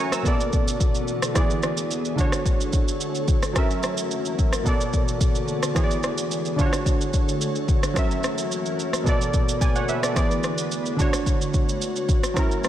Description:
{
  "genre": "afrobeats",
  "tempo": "109 BPM",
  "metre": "4/4",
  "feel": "straight",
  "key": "unclear",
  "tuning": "A4 = 435 Hz",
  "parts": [
    { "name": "warm analog keys", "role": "accompaniment", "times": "0.0-12.7 s", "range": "B2 to E6", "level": "-26 LUFS", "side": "right 3 dB", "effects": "chorus" },
    { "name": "glassy FM pad", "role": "sustained chords", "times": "0.0-12.7 s", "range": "D3 to C#5", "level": "-29 LUFS", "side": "left 3 dB", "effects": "ensemble chorus, built-in reverb, sidechain pumping" },
    { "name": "afro-pop drum kit", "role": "drums", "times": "0.1-12.7 s", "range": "kick drum, rim click, shaker", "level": "-23 LUFS", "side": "equal", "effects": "none" }
  ],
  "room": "little or no reverb",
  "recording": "none",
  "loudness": "-20 LUFS",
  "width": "side -11 dB against mid",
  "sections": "0.0-12.7 A section",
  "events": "none",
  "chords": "0.3 Bm7; 1.4 E7; 2.2 Dmaj7; 3.6 F#7; 4.7 Bm7; 5.8 E7; 6.6 Dmaj7; 8.0 F#7; 9.1 Bm7; 10.2 E7; 11.0 Dmaj7"
}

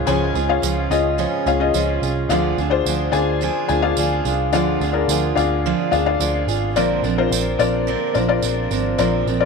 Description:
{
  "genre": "piano-driven pop",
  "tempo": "108 BPM",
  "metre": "4/4",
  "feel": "straight",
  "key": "unclear",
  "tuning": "A4 = 438 Hz",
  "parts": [
    { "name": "felt-muted upright piano", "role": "accompaniment", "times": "0.0-9.5 s", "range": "Ab2 to Ab5", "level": "-20 LUFS", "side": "left 10 dB", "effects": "none" },
    { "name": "picked steel-string acoustic guitar", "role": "riff", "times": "0.0-9.5 s", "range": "Bb2 to Bb4", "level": "-23 LUFS", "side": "right 14 dB", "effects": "none" },
    { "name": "vintage muted picked electric bass", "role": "bass", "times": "0.1-9.5 s", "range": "Ab1 to D2", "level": "-24 LUFS", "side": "right 2 dB", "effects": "none" },
    { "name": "tambourine", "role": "percussion", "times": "0.1-9.4 s", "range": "none", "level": "-30 LUFS", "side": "right 19 dB", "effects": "none" }
  ],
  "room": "moderate spring reverb, RT60 2.5 s",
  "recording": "1960s-style stereo with parts hard left and right",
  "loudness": "-17 LUFS",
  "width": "side -4 dB against mid",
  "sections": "0.0-9.5 A section",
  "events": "none",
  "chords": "0.0 Db; 2.3 Bbadd9"
}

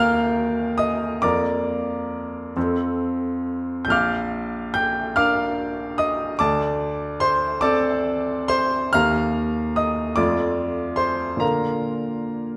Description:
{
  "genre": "classical, romantic nocturne for solo piano",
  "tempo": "43-50 BPM (dotted quarters)",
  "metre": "6/8",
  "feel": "rubato",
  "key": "Bb major",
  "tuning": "A4 = 440 Hz",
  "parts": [
    { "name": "clear baby grand piano", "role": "solo", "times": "0.0-12.6 s", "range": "Bb1 to G6", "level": "-22 LUFS", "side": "equal", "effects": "none" }
  ],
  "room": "wet scoring stage reverb, RT60 1.7 s",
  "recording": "none",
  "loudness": "-23 LUFS",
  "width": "mono",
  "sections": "0.0-12.6 A section",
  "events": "none",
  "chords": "0.0 Eb; 1.2 Bb/F; 2.6 F; 3.9 Bb; 6.4 D5; 8.9 Eb; 10.2 F; 11.4 Bb"
}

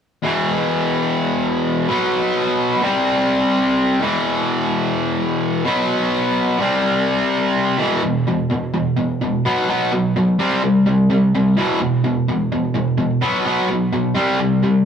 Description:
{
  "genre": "rock",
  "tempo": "127 BPM",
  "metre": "4/4",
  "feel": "straight",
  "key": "E minor",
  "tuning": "A4 = 440 Hz",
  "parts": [
    { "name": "distorted electric guitar", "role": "solo", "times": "0.2-14.8 s", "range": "E2 to C4", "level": "-16 LUFS", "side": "equal", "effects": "overdrive" }
  ],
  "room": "wet small room reverb, RT60 0.5 s",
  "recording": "rough rehearsal-room recording",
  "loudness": "-16 LUFS",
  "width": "side -7 dB against mid",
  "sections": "0.2-7.8 A section; 7.8-14.8 B section",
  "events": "none",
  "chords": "0.2 E5; 1.9 B5; 2.8 C5; 4.0 E5; 5.7 B5; 6.6 C5; 7.8 E5; 9.4 B5; 10.4 C5; 11.6 E5; 13.2 B5; 14.2 C5"
}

